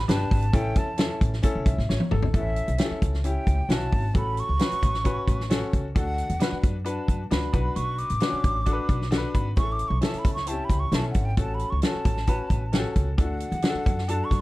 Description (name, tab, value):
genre	uptempo 1960s-style soul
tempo	133 BPM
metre	4/4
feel	straight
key	A mixolydian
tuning	A4 = 440 Hz
part	breathy mellow silver concert flute	melody	0.0-14.4 s	E5 to D6	-31 LUFS	right 1 dB	slapback echo, plate reverb
part	upright bass	bass	0.0-14.4 s	G1 to F#2	-27 LUFS	equal	none
part	bright upright piano	accompaniment	0.1-14.4 s	B3 to B5	-32 LUFS	left 3 dB	plate reverb
part	natural country drum kit	drums	0.1-14.4 s	hi-hat, kick drum, snare drum, toms	-24 LUFS	equal	none
room	little or no reverb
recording	dark, warm production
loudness	-22 LUFS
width	side -18 dB against mid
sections	0.0-2.3 A section; 2.3-14.4 B section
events	drum fill 1.9-2.3; upright piano fill 8.9-9.6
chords	0.0 G; 0.5 A; 4.1 F#m/A; 6.0 D; 7.5 Bm; 9.6 A; 11.4 F#m/A; 13.2 D